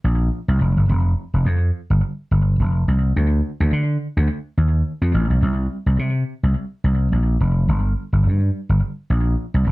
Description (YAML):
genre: funk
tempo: 106 BPM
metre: 4/4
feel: swing 56% on 16ths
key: unclear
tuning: A4 = 441 Hz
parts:
  - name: vintage slap bass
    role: solo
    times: 0.0-9.7 s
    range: F1 to D3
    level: -17 LUFS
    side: equal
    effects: slapback echo
room: light reverb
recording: dry, close 1970s-style studio recording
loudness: -17 LUFS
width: side -21 dB against mid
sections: 0.0-9.7 A section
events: none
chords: none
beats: 0.33 | 0.90 1.46 2.03 2.59 | 3.16 3.73 4.29 4.86 | 5.42 5.99 6.55 7.12 | 7.69 8.25 8.82 9.38